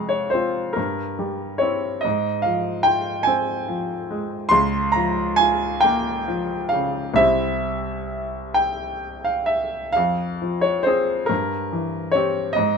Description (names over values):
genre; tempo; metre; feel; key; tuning
classical, romantic nocturne for solo piano; 43-49 BPM (dotted quarters); 12/8; rubato; F minor; A4 = 441 Hz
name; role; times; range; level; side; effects
clear grand piano; solo; 0.0-12.8 s; C2 to C6; -20 LUFS; equal; none
room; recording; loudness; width
light reverb; minimal, uncompressed stereo recording; -20 LUFS; side -5 dB against mid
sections
0.0-12.8 A section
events
none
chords
0.0 Fm; 0.8 C7/G; 2.0 Fm/Ab; 4.5 Bbm/Db; 7.2 C; 10.0 Fm; 11.3 C7/G